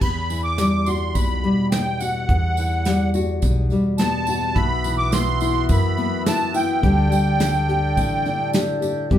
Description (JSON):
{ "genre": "acoustic folk duo or small band", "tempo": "106 BPM", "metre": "4/4", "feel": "straight", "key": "E minor", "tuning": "A4 = 440 Hz", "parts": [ { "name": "musette accordion", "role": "melody", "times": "0.0-8.5 s", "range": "F#5 to D6", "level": "-24 LUFS", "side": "right 1 dB", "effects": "none" }, { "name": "nylon-string guitar", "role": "accompaniment", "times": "0.0-9.2 s", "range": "E2 to G4", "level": "-22 LUFS", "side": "left 2 dB", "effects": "none" }, { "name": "upright bass", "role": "bass", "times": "0.0-9.2 s", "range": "E1 to F#2", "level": "-23 LUFS", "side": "equal", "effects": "none" }, { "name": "soft brush drum kit", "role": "drums", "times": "0.0-9.2 s", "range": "crash cymbal, hi-hat, kick drum, snare drum", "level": "-24 LUFS", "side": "right 1 dB", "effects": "none" }, { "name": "tambourine", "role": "percussion", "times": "0.3-9.0 s", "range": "none", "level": "-37 LUFS", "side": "right 6 dB", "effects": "none" }, { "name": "pedal harmonium", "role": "sustained chords", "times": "4.5-9.1 s", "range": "B3 to G5", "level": "-30 LUFS", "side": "right 1 dB", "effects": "none" } ], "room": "wet studio reverb, RT60 0.6 s", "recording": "heard from further back in the room", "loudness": "-18 LUFS", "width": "side -11 dB against mid", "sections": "0.0-9.1 A section", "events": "none", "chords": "0.0 Emadd9; 4.6 Bsus4; 6.8 Dsus4" }